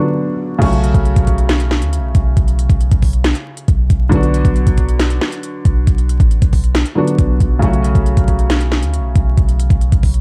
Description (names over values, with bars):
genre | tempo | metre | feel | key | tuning
hip hop, trap | 137 BPM | 4/4 | half-time | unclear | A4 = 440 Hz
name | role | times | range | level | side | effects
felt-muted upright piano | accompaniment | 0.0-10.2 s | C#3 to F#4 | -22 LUFS | equal | low-pass filter
clean 808-style bass | bass | 0.6-10.2 s | A1 to D2 | -17 LUFS | equal | none
trap drum kit | drums | 0.6-10.2 s | crash cymbal, handclaps, hi-hat, kick drum, snare drum | -18 LUFS | equal | none
room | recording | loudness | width
digital ambience | dark, warm production, vinyl crackle | -14 LUFS | mono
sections
0.6-10.2 A section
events
break 0.0-0.6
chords
0.0 Bm; 0.6 F#m/B; 4.1 Bm; 7.6 F#m/B